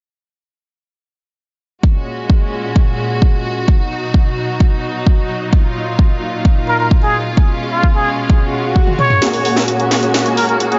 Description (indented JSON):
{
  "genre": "EDM, festival progressive house",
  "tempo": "130 BPM",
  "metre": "4/4",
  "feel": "straight",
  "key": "F# major",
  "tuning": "A4 = 440 Hz",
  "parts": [
    { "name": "clear symphonic string section", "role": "sustained chords", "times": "1.8-10.8 s", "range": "A#2 to F#4", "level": "-22 LUFS", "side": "equal", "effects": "sidechain pumping, low-pass filter" },
    { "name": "electronic kick drum", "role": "drums", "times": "1.8-8.8 s", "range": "none", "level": "-14 LUFS", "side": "equal", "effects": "overdrive, studio reverb" },
    { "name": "trumpet with plunger mute", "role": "melody", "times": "6.7-10.8 s", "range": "E#4 to C#5", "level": "-20 LUFS", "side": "equal", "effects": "digital delay" },
    { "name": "swell and riser", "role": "sound effects", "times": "8.5-10.8 s", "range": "none", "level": "-28 LUFS", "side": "equal", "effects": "none" },
    { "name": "house drum kit", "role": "drums", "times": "8.9-10.8 s", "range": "hi-hat, snare drum, toms", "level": "-20 LUFS", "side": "equal", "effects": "high-pass filter on toms, studio reverb, high-pass filter on snare, high-pass filter on hats" },
    { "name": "supersaw chords", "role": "riff", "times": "9.2-10.8 s", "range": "A#3 to G#5", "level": "-18 LUFS", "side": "equal", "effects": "sidechain pumping, low-pass filter, digital delay" }
  ],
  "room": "light reverb",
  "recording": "nothing above 7.6 kHz",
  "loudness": "-15 LUFS",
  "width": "mono",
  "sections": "1.8-9.2 A section; 9.2-10.8 B section",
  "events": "swell 8.5-9.2; drum fill 8.9-9.2, 9.2-10.8; build-up 9.2-10.8; filter sweep on supersaw synth 9.2-10.8; filter sweep on string section 9.2-10.8",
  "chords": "1.8 F#add9; 3.7 B; 5.5 D#madd9; 7.4 C#7; 9.2 F#add9",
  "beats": "| 1.83 2.30 2.76 3.22 | 3.68 4.14 4.60 5.07 | 5.53 5.99 6.45 6.91 | 7.37 7.83 8.30 8.76 | 9.22 9.68 10.14 10.60"
}